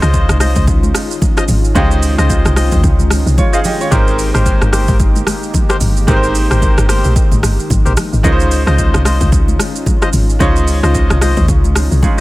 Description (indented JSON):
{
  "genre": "amapiano",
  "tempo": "111 BPM",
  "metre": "4/4",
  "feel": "swing 58% on 16ths",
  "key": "Db lydian",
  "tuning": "A4 = 440 Hz",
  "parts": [
    { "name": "bright grand piano", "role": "accompaniment", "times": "0.0-12.2 s", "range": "Ab3 to F5", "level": "-21 LUFS", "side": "right 4 dB", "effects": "none" },
    { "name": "warm analog pad", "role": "sustained chords", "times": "0.0-12.2 s", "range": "Eb3 to G4", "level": "-23 LUFS", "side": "left 2 dB", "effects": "chorus" },
    { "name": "percussive organ stab", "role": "stabs", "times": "0.0-12.2 s", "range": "F4 to Eb5", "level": "-21 LUFS", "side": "left 3 dB", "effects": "chorus, digital delay" },
    { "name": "deep log drum bass", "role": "bass", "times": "0.0-12.0 s", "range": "G1 to Eb2", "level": "-13 LUFS", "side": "equal", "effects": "none" },
    { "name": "deep house drum kit", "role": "drums", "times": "0.0-12.2 s", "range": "hi-hat, kick drum, rim click, shaker", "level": "-15 LUFS", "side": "equal", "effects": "overdrive" },
    { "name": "congas", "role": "percussion", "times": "0.4-12.2 s", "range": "none", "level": "-22 LUFS", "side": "left 2 dB", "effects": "none" }
  ],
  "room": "little or no reverb",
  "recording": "none",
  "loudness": "-10 LUFS",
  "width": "side -18 dB against mid",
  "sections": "0.0-12.2 A section",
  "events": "none",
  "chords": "0.0 Dbmaj9; 3.9 Abmaj9; 8.2 Dbmaj9",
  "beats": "0.14 0.68 1.22 | 1.76 2.30 2.84 3.38 | 3.92 4.46 5.00 5.54 | 6.08 6.62 7.16 7.70 | 8.24 8.78 9.32 9.86 | 10.40 10.95 11.49 12.03"
}